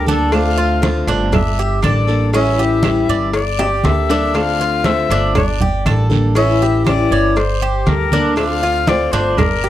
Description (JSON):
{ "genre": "latin, Cuban son and guajira", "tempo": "119 BPM", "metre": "4/4", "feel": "straight", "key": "D minor", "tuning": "A4 = 440 Hz", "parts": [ { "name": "breathy bright jazz flute", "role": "second line", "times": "0.0-9.7 s", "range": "A4 to F5", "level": "-20 LUFS", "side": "left 8 dB", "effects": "none" }, { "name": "picked steel-string acoustic guitar", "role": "accompaniment", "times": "0.0-9.4 s", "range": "D3 to A4", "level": "-19 LUFS", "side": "left 2 dB", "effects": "none" }, { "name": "Cuban tres", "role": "arpeggios", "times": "0.0-9.7 s", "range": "C#4 to D5", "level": "-21 LUFS", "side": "right 6 dB", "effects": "none" }, { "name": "upright bass", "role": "bass", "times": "0.0-9.7 s", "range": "G1 to D2", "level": "-19 LUFS", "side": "right 1 dB", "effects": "none" }, { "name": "congas", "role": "percussion", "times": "0.1-9.7 s", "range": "none", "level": "-20 LUFS", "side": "right 1 dB", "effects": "none" }, { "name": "guiro", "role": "percussion", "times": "0.1-9.7 s", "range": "none", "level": "-32 LUFS", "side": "right 18 dB", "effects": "none" }, { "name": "claves", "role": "percussion", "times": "0.3-9.6 s", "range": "none", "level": "-28 LUFS", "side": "right 19 dB", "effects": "none" }, { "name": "cowbell and bongos", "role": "percussion", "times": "0.3-9.6 s", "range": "none", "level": "-23 LUFS", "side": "left 3 dB", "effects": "none" } ], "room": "little or no reverb", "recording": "dry, close 1970s-style studio recording", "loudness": "-13 LUFS", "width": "side -12 dB against mid", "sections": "0.0-9.7 A section", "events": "drum fill 3.6-4.4", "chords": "0.3 Dm7; 1.3 Gmadd9; 2.3 A7; 3.3 Gmadd9; 4.4 Dm7; 5.4 Gmadd9; 6.4 A7; 7.4 Gmadd9; 8.4 Dm7" }